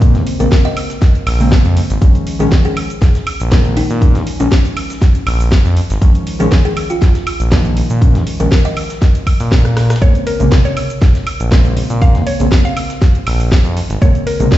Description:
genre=deep house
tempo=120 BPM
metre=4/4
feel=swing 54% on 16ths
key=unclear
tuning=A4 = 440 Hz
part: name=deep mellow chord stab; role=stabs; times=0.0-14.6 s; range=C3 to Db4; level=-19 LUFS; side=equal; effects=lush chorus, vintage 12-bit sampler grit, sidechain pumping, tape echo
part: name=smooth synth bass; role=bass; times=0.0-14.5 s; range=Ab1 to Bb2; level=-15 LUFS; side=equal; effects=sidechain pumping
part: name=dusty soul sampler-style drum kit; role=drums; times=0.0-14.6 s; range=hi-hat, snare drum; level=-33 LUFS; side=left 1 dB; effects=none
part: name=electronic kick drum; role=drums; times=0.0-14.6 s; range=none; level=-10 LUFS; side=equal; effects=studio reverb
part: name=house drum kit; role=drums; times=0.0-14.6 s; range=cabasa, hi-hat, rim click, snare drum, woodblock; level=-21 LUFS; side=equal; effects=studio reverb
part: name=kalimba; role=melody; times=0.4-9.3 s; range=Db4 to Eb5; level=-23 LUFS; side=left 2 dB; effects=tape echo
part: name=mallet-like synth pluck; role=melody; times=10.0-14.6 s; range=Bb4 to F5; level=-22 LUFS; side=left 2 dB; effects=chorus, tape echo
room=little or no reverb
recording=played on a big sound system in a bare room, stone room reverb, nothing above 7.9 kHz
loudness=-10 LUFS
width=side -14 dB against mid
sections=0.0-14.6 A section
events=drum fill 9.6-10.0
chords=0.0 Bbm9; 2.0 Dbadd9; 10.0 Bbm9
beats=| 0.02 0.52 1.02 1.52 | 2.02 2.52 3.02 3.52 | 4.02 4.52 5.02 5.52 | 6.02 6.52 7.02 7.52 | 8.02 8.52 9.02 9.52 | 10.02 10.52 11.02 11.52 | 12.02 12.52 13.02 13.52 | 14.02 14.52

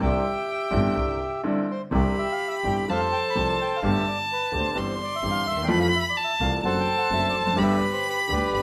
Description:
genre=tango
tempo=127 BPM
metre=4/4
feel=rubato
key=C major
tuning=A4 = 442 Hz
part: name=bandoneon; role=melody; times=0.0-8.6 s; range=G4 to B5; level=-30 LUFS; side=equal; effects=none
part: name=warm violin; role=second line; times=0.0-8.6 s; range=G5 to C6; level=-30 LUFS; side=equal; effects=none
part: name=warm grand piano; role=accompaniment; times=0.0-8.6 s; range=G1 to G4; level=-29 LUFS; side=equal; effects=none
part: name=clear double bass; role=bass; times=0.0-8.6 s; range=F1 to F2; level=-32 LUFS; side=equal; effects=none
room=wet stone room reverb, RT60 1.1 s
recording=band playing live in one room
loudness=-24 LUFS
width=mono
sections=0.0-1.9 A section; 1.9-8.6 B section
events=none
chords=0.0 Cadd9; 2.9 Fadd9; 3.8 Gadd9; 4.8 C/G; 5.7 Fmaj7; 6.6 D7/F#; 7.6 G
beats=| 0.02 0.49 0.97 1.45 | 1.93 2.40 2.88 3.35 | 3.83 4.30 4.76 5.23 | 5.70 6.17 6.64 7.11 | 7.58 8.05 8.53

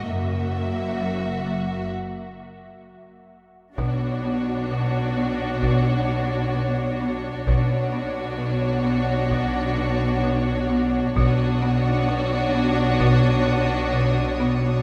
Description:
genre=cinematic, suspense film score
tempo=65 BPM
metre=4/4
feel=straight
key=B minor from 3.8 s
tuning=A4 = 440 Hz
part: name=warm studio violin section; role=melody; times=0.0-14.8 s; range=C#5 to E5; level=-33 LUFS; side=equal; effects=none
part: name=warm studio violin section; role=second line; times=0.0-14.8 s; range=F#4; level=-33 LUFS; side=equal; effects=none
part: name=warm studio viola section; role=accompaniment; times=0.0-14.8 s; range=A#3 to D4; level=-32 LUFS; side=equal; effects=none
part: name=rich studio cello section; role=bass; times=0.0-14.8 s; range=F#2 to B2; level=-30 LUFS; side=equal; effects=none
part: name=warm studio double bass section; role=bass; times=0.0-14.8 s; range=F#1 to B1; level=-31 LUFS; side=equal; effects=none
part: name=buzzing marimba with medium hard mallets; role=riff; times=0.1-14.7 s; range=F#2 to B3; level=-28 LUFS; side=equal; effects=none
part: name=taiko ensemble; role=drums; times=3.8-13.9 s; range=none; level=-29 LUFS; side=equal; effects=none
part: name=rich studio violin section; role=texture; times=11.2-14.8 s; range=C#6 to D#6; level=-39 LUFS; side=equal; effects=none
room=moderate cathedral reverb, RT60 5.5 s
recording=in a vast, echoing space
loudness=-23 LUFS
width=mono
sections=0.0-3.8 A section; 3.8-14.8 B section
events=break 1.9-3.8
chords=0.1 F#7; 3.8 Bmadd9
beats=| 0.09 1.01 1.93 2.85 | 3.78 4.70 5.62 6.55 | 7.47 8.39 9.31 10.24 | 11.16 12.09 13.01 13.93

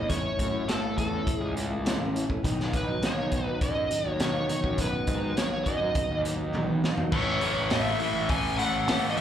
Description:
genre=quiet-loud alternative rock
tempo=102 BPM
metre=4/4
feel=straight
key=unclear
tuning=A4 = 436 Hz
part: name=smooth overdriven lead guitar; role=melody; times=0.0-9.2 s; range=A4 to G#5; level=-31 LUFS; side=equal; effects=slapback echo
part: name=fingerpicked plugged-in steel-string acoustic guitar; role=arpeggios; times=0.0-7.1 s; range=A2 to E4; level=-32 LUFS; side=equal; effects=slapback echo
part: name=fuzz picked electric bass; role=bass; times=0.0-9.2 s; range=F#1 to A2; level=-33 LUFS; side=equal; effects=overdrive
part: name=raw garage drum kit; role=drums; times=0.1-9.2 s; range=crash cymbal, hi-hat, kick drum, snare drum, toms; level=-30 LUFS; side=equal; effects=none
part: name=distorted electric guitar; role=riff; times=7.1-9.2 s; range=A2 to A3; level=-30 LUFS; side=left 11 dB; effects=distortion, slapback echo
part: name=thick fuzz guitar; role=riff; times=7.1-9.2 s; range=A2 to A3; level=-32 LUFS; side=right 10 dB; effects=distortion
room=small room ambience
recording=live gig heard through the venue's PA, club reverb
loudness=-25 LUFS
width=side -10 dB against mid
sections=0.0-7.1 A section; 7.1-9.2 B section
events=drum fill 6.5-7.1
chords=0.0 A; 2.4 B; 7.1 A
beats=| 0.10 0.69 1.27 1.86 | 2.44 3.03 3.61 4.20 | 4.79 5.37 5.96 6.54 | 7.12 7.71 8.29 8.88

